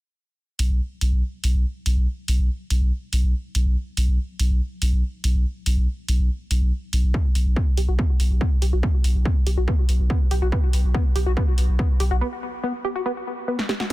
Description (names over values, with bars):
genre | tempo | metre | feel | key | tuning
driving peak-time techno | 142 BPM | 4/4 | straight | unclear | A4 = 440 Hz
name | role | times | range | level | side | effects
saturated sub bass | bass | 0.6-12.2 s | B1 | -20 LUFS | equal | tube saturation, sidechain pumping, low-pass filter
punchy analog drum machine | drums | 0.6-13.9 s | hi-hat, snare drum | -29 LUFS | equal | sidechain pumping on hats
tight sequenced synth | riff | 7.1-13.9 s | B3 to G4 | -28 LUFS | left 1 dB | chorus, sidechain pumping, ping-pong delay
electronic kick drum | drums | 7.1-13.9 s | none | -21 LUFS | equal | none
room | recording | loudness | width
little or no reverb | dense, heavily limited modern master | -20 LUFS | side -18 dB against mid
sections
0.4-13.9 A section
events
break 12.2-13.9; drum fill 13.6-13.9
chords
0.4 B5